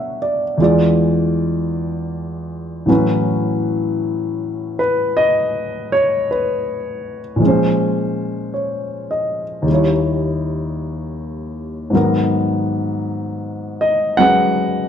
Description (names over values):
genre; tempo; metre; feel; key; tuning
jazz ballad; 53 BPM; 4/4; swing 66% on 8ths; G# minor; A4 = 440 Hz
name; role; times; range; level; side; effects
warm grand piano; solo; 0.0-14.9 s; D#2 to F#5; -16 LUFS; equal; none
room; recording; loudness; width
moderate large studio reverb, RT60 1.3 s; close, detailed microphones; -16 LUFS; side -8 dB against mid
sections
0.0-14.9 A section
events
none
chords
0.0 Bm9; 0.6 E7b9; 2.9 A69; 7.4 A#m9; 9.7 D#7b9; 11.9 G#m9